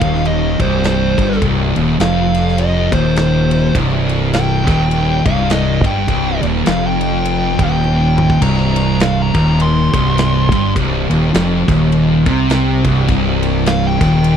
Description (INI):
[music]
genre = stoner and doom metal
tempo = 103 BPM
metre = 4/4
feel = swing 59% on 8ths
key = C minor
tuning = A4 = 440 Hz
[part]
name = fuzz lead guitar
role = melody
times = 0.0-14.4 s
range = C5 to C6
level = -20 LUFS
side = equal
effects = distortion, slapback echo
[part]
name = fuzz guitar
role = riff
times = 0.0-14.4 s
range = C2 to C3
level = -21 LUFS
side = equal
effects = distortion
[part]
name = thick fuzz guitar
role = riff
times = 0.0-14.4 s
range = C2 to C3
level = -18 LUFS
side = left 7 dB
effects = distortion
[part]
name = thick fuzz guitar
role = riff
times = 0.0-14.4 s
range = C2 to C3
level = -18 LUFS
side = right 9 dB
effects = distortion
[part]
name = fuzz fingered electric bass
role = bass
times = 0.0-14.4 s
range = C1 to C2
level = -20 LUFS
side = equal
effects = overdrive
[part]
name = big rock drum kit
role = drums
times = 0.0-14.4 s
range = crash cymbal, kick drum, ride cymbal, snare drum, toms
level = -21 LUFS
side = equal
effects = none
[sound]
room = small room ambience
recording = dry, close 1970s-style studio recording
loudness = -12 LUFS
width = side -8 dB against mid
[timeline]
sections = 0.0-14.4 A section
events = lead electric guitar solo 0.0-14.4; drum fill 7.8-8.4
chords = 0.0 Cm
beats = 0.26 0.84 | 1.42 2.00 2.59 3.17 | 3.75 4.34 4.92 5.50 | 6.09 6.67 7.25 7.84 | 8.42 9.01 9.59 10.17 | 10.76 11.34 11.93 12.51 | 13.09 13.68 14.26